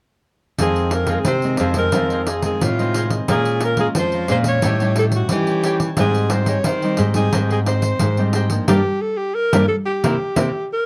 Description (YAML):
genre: samba and choro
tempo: 89 BPM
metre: 4/4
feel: straight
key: F minor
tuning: A4 = 439 Hz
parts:
  - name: breathy alto saxophone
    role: melody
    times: 0.6-10.9 s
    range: F4 to Db5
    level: -24 LUFS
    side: equal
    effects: none
  - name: cavaquinho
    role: accompaniment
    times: 0.6-10.5 s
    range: F4 to Bb5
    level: -30 LUFS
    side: equal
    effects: none
  - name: nylon-string guitar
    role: accompaniment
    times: 0.6-10.5 s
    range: F2 to F4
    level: -26 LUFS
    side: equal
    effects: none
  - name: nylon-string guitar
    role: bass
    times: 0.6-10.5 s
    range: F2 to F3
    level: -23 LUFS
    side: equal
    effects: none
  - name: pandeiro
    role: percussion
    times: 0.6-10.5 s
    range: none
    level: -26 LUFS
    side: equal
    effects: none
room: moderate small room reverb, RT60 0.5 s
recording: dark, warm production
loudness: -19 LUFS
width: mono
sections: 0.6-10.9 A section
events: band accent 8.7-10.9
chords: 0.6 Fm7; 3.3 Bbm7; 4.6 A7#11; 6.0 Abmaj7; 8.7 Gm; 10.0 C7